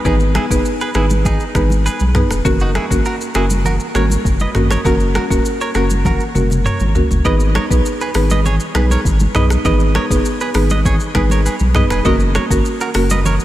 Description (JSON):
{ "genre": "afrobeats", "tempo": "100 BPM", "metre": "4/4", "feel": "straight", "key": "G# minor", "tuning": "A4 = 440 Hz", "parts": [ { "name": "buzzing marimba with hard mallets", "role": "accompaniment", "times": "0.0-13.2 s", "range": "A#3 to B4", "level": "-19 LUFS", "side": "equal", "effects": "none" }, { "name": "direct-recorded clean electric guitar", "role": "riff", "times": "0.1-13.4 s", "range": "D#4 to D#5", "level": "-22 LUFS", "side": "right 3 dB", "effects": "spring reverb, tape echo" }, { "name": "saturated sub bass", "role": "bass", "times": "0.1-13.4 s", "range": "D#1 to B1", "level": "-16 LUFS", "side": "equal", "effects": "none" }, { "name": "afro-pop drum kit", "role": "drums", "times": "0.1-13.4 s", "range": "finger snaps, hi-hat, kick drum, rim click, shaker, toms", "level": "-19 LUFS", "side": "equal", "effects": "none" }, { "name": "congas", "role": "percussion", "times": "0.1-13.4 s", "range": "none", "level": "-26 LUFS", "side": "right 1 dB", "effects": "none" } ], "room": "light reverb", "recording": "none", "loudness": "-13 LUFS", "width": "side -14 dB against mid", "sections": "0.0-7.3 A section; 7.3-13.4 B section", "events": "drum fill 6.1-7.3", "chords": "0.0 G#m; 2.5 F#; 7.3 G#m; 12.1 F#", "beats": "| 0.05 0.65 1.25 1.85 | 2.45 3.05 3.65 4.25 | 4.85 5.45 6.05 6.65 | 7.25 7.85 8.45 9.05 | 9.65 10.25 10.85 11.45 | 12.05 12.65 13.25" }